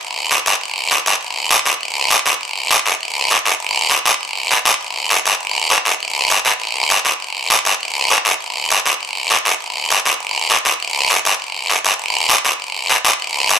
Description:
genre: latin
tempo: 200 BPM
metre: 4/4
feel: straight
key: none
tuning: none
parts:
  - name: guiro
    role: percussion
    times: 0.0-13.6 s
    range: none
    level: -13 LUFS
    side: equal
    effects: none
room: moderate studio reverb, RT60 0.7 s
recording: none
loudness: -13 LUFS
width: side -8 dB against mid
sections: 0.0-2.4 A section; 2.4-12.0 B section; 12.0-13.6 C section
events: none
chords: none

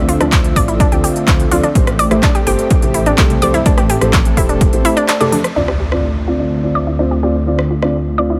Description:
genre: progressive house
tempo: 126 BPM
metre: 4/4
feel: straight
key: D minor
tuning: A4 = 439 Hz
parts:
  - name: lush unison pad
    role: sustained chords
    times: 0.0-8.4 s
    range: D3 to E5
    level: -23 LUFS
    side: equal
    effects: chorus, sidechain pumping
  - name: dark detuned saw bass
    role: bass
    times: 0.0-8.4 s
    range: E1 to D2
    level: -22 LUFS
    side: equal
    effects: sidechain pumping
  - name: analog pluck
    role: arpeggios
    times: 0.1-8.3 s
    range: D3 to D5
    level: -22 LUFS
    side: equal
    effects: chorus, sidechain pumping, dub echo
  - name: big-room dance drum kit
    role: drums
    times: 0.1-7.9 s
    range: handclaps, hi-hat, rim click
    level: -23 LUFS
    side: equal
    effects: overdrive
  - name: dark grand piano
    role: stabs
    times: 0.2-8.4 s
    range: A3 to D5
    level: -22 LUFS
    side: equal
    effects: sidechain pumping, low-pass filter, dub echo
  - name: congas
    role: percussion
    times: 0.2-5.4 s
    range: none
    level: -27 LUFS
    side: equal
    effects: sidechain pumping on perc
  - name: electronic kick drum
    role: drums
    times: 0.3-4.7 s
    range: none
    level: -16 LUFS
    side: equal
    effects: overdrive
  - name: impact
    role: sound effects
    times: 5.6-7.5 s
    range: none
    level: -30 LUFS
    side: equal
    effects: none
room: light reverb, digital ambience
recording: none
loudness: -14 LUFS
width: mono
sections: 0.0-5.6 A section; 5.6-8.4 B section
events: band accent 5.1; impact 5.6-7.5; filter sweep on synth arpeggio sound 5.6-8.4; filter sweep on grand piano 5.6-8.4; filter sweep on analog synth pad 5.6-8.4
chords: 0.0 Dm7; 1.8 Am7; 5.6 Dm7

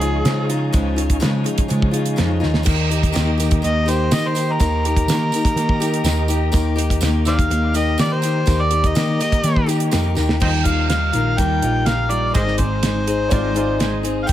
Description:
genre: folk rock and heartland rock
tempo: 124 BPM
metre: 4/4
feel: straight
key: unclear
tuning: A4 = 440 Hz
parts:
  - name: overdriven harmonica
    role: melody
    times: 0.0-0.5, 3.6-14.3 s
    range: Ab4 to G5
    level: -23 LUFS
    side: equal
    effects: plate reverb, tape echo
  - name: picked steel-string acoustic guitar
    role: accompaniment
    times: 0.0-14.3 s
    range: Ab2 to Ab4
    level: -25 LUFS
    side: left 5 dB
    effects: plate reverb
  - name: tonewheel organ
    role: sustained chords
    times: 0.0-14.3 s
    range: Eb4 to Eb5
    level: -31 LUFS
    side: equal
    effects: chorus vibrato, fast rotary speaker, plate reverb
  - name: mellow electric guitar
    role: riff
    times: 0.0-14.3 s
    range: Ab2 to Bb4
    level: -24 LUFS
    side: left 1 dB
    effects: none
  - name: hollow-body short-scale picked electric bass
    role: bass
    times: 0.0-14.3 s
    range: Ab1 to Eb3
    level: -21 LUFS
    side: equal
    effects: none
  - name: damped 70s drum kit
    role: drums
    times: 0.0-14.3 s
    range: crash cymbal, hi-hat, kick drum, snare drum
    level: -21 LUFS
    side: right 1 dB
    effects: none
  - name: tambourine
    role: percussion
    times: 2.7-10.3 s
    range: none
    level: -33 LUFS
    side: right 9 dB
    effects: none
  - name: clear upright piano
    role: second line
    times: 13.3-14.1 s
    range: F4 to D5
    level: -28 LUFS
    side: right 5 dB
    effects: plate reverb
room: light reverb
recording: none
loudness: -16 LUFS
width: side -12 dB against mid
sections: 0.0-10.4 A section; 10.4-14.3 B section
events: harmonica solo 0.0-10.4; drum fill 2.4, 10.2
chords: 0.0 Dbadd9; 2.7 Eb; 10.4 Ebadd9; 12.3 Ab

